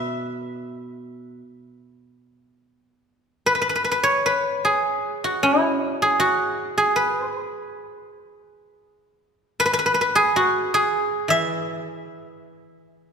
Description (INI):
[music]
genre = chinese traditional, Chinese solo plucked strings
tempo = 78 BPM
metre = 4/4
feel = uneven beats, rubato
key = E gong mode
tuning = A4 = 440 Hz
[part]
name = guzheng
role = solo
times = 0.0-13.1 s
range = B2 to E5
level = -20 LUFS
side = equal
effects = none
[sound]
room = wet concert hall reverb, RT60 2.5 s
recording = minimal, uncompressed stereo recording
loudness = -19 LUFS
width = side -6 dB against mid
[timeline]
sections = 0.0-2.3 A section; 2.3-13.1 B section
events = none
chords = none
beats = 0.57 1.41 | 2.25 3.07 3.88 4.65 | 5.42 6.18 6.94 7.70 | 8.46 9.21 9.97 10.74 | 11.50 12.26 13.05